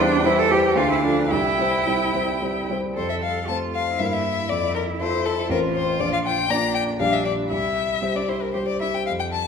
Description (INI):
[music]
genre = quick classical-period movement for piano trio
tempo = 107-121 BPM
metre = 3/4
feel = rubato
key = F major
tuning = A4 = 439 Hz
[part]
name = rich violin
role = melody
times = 0.0-9.5 s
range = A4 to Bb5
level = -25 LUFS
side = left 7 dB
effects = none
[part]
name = rich cello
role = second line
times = 0.0-8.9 s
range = C4 to A4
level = -25 LUFS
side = right 4 dB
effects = none
[part]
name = dark baby grand piano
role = accompaniment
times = 0.0-9.5 s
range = A1 to D5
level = -24 LUFS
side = equal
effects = none
[sound]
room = wet scoring stage reverb, RT60 1.7 s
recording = minimal, uncompressed stereo recording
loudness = -20 LUFS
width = side -6 dB against mid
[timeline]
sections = 0.0-3.0 A section; 3.0-9.5 B section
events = none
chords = 0.0 C/E; 0.8 Dm; 1.3 C; 3.0 F; 4.0 Edim/G; 4.5 F; 5.5 F/A; 6.0 Bb; 7.0 Gm/Bb; 7.5 C